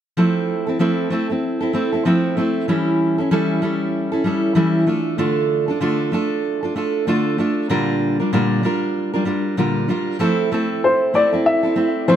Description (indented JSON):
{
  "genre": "acoustic pop",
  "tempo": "96 BPM",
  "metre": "4/4",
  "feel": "swing 60% on 16ths",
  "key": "F major",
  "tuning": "A4 = 440 Hz",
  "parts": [
    { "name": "fingerpicked steel-string acoustic guitar", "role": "accompaniment", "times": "0.2-12.2 s", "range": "Bb2 to Bb4", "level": "-17 LUFS", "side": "right 1 dB", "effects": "none" },
    { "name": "warm upright piano", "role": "melody", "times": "10.8-12.2 s", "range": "C5 to E5", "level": "-16 LUFS", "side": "left 2 dB", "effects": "digital delay" }
  ],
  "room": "moderate plate reverb, RT60 2.4 s",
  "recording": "none",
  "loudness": "-17 LUFS",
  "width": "side -10 dB against mid",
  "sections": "0.2-10.2 A section; 10.2-12.2 B section",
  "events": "none",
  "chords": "0.2 Fmaj7; 2.7 A7/E; 4.9 Dm; 7.7 Bb6; 10.2 Fmaj7"
}